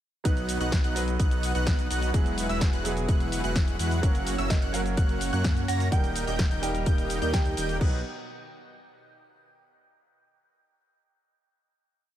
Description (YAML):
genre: EDM, festival progressive house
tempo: 127 BPM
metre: 4/4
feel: straight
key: B major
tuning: A4 = 440 Hz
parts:
  - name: warm grand piano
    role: accompaniment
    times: 0.2-8.0 s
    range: F#3 to B4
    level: -34 LUFS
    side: right 4 dB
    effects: vintage 12-bit sampler grit, sidechain pumping, dub echo
  - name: lush unison pad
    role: sustained chords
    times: 0.2-8.0 s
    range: B2 to D#5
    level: -39 LUFS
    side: left 1 dB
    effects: chorus, sidechain pumping
  - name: plucky unison lead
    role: arpeggios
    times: 0.2-8.0 s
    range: E6 to A#6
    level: -36 LUFS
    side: left 1 dB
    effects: sidechain pumping, dub echo
  - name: dense compressed supersaw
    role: riff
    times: 0.2-8.0 s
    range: G#3 to A#5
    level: -33 LUFS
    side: right 1 dB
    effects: sidechain pumping, dub echo
  - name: wide detuned saw bass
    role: bass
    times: 0.3-8.0 s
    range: D#1 to F#2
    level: -30 LUFS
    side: equal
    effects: chorus, sidechain pumping
  - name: electronic kick drum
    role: drums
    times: 0.3-7.9 s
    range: none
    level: -24 LUFS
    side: equal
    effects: none
  - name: house drum kit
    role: drums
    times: 0.3-7.9 s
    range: crash cymbal, hi-hat, shaker, snare drum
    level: -34 LUFS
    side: equal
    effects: none
  - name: mallet-like synth pluck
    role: melody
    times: 4.5-7.8 s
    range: D#5 to G5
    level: -37 LUFS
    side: right 3 dB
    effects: wide subtle chorus, dub echo
room: little or no reverb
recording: none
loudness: -24 LUFS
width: side -12 dB against mid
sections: 0.2-7.8 drop; 7.8-9.7 final chord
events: drop 0.2-7.8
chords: 0.2 B; 2.1 Eadd9; 4.0 F#; 5.9 D#; 7.8 B